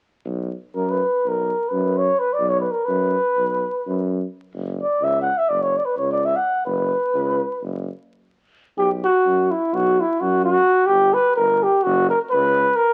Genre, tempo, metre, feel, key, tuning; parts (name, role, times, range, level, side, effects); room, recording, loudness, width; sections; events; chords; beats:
balkan folk; free time; B harmonic minor; A4 = 440 Hz
clear tuba; bass; 0.2-12.7 s; F#1 to F#2; -28 LUFS; equal
mellow flugelhorn; melody; 0.8-12.9 s; E4 to F#5; -20 LUFS; equal
moderate large studio reverb, RT60 0.9 s; very old 78 rpm record, vinyl crackle; -20 LUFS; mono
0.2-8.8 A section; 8.8-12.9 B section
break 8.1-8.8
0.2 B5; 4.5 F#5; 8.8 B5; 10.9 Gm; 11.8 F#5
free time